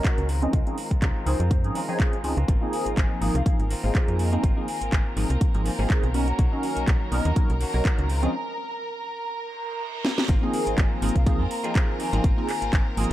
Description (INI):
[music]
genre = filtered disco house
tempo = 123 BPM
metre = 4/4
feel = swing 55% on 16ths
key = Ab major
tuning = A4 = 440 Hz
[part]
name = funky polysynth comp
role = accompaniment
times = 0.0-13.1 s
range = F3 to A#4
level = -29 LUFS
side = right 1 dB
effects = chorus, phaser, cassette tape, sidechain pumping, low-pass filter
[part]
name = warm studio violin section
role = sustained chords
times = 0.0-13.1 s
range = Bb4 to Bb5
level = -34 LUFS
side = right 1 dB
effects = sidechain pumping, low-pass filter
[part]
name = direct-recorded clean electric guitar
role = riff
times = 0.0-13.1 s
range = D#3 to F#4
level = -35 LUFS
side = left 2 dB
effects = vibrato effect, sidechain pumping, low-pass filter
[part]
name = electronic kick drum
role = drums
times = 0.0-12.8 s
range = none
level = -22 LUFS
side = equal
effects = none
[part]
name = house drum kit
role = drums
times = 0.0-13.1 s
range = handclaps, hi-hat, snare drum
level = -32 LUFS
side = equal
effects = sidechain pumping on hats, sidechain pumping on cymbals
[part]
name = slap-like FM bass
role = bass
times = 0.2-13.1 s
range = Ab1 to Ab2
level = -25 LUFS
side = equal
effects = sidechain pumping, low-pass filter
[part]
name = breathy mellow jazz flute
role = melody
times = 0.4-12.9 s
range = C5 to Ab5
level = -36 LUFS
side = left 5 dB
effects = sidechain pumping, low-pass filter, dub echo
[part]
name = reverse cymbal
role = sound effects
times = 9.5-10.3 s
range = none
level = -36 LUFS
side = right 8 dB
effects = none
[sound]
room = light reverb, digital ambience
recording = none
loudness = -22 LUFS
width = side -14 dB against mid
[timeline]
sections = 0.0-10.3 A section; 10.3-13.1 B section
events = filter sweep 0.0-10.3; break 8.3-10.3; reverse cymbal 9.5-10.3; drum fill 10.0; drop 10.3-13.1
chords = 0.3 Dbmaj9; 2.5 Ab69; 6.1 Bmaj9; 8.1 Dbmaj7; 10.3 Ab69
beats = 0.05 | 0.53 1.02 1.51 2.00 | 2.48 2.97 3.46 3.95 | 4.44 4.92 5.41 5.90 | 6.39 6.88 7.36 7.85 | 8.34 8.83 9.31 9.80 | 10.29 10.78 11.27 11.75 | 12.24 12.73